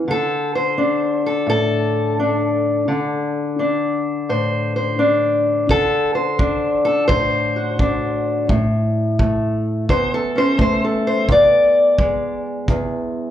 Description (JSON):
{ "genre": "acoustic country blues, solo or duo", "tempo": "86 BPM", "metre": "4/4", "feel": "swing 66% on 8ths", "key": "unclear", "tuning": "A4 = 439 Hz", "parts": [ { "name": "fingerpicked steel-string acoustic guitar", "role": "melody", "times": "0.0-13.3 s", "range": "E2 to D5", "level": "-16 LUFS", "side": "left 1 dB", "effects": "slapback echo" }, { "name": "kick drum", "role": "drums", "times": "5.7-12.9 s", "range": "none", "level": "-20 LUFS", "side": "equal", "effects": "none" } ], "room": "light reverb, studio reverb", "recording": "live gig heard through the venue's PA, club reverb", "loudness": "-16 LUFS", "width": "side -10 dB against mid", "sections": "0.0-13.3 A section", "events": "none", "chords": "0.1 D7(no3); 8.5 A; 11.3 E7", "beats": "| 0.08 0.78 1.48 2.19 | 2.88 3.59 4.29 4.99 | 5.69 6.39 7.09 7.79 | 8.49 9.19 9.89 10.59 | 11.29 11.98 12.68" }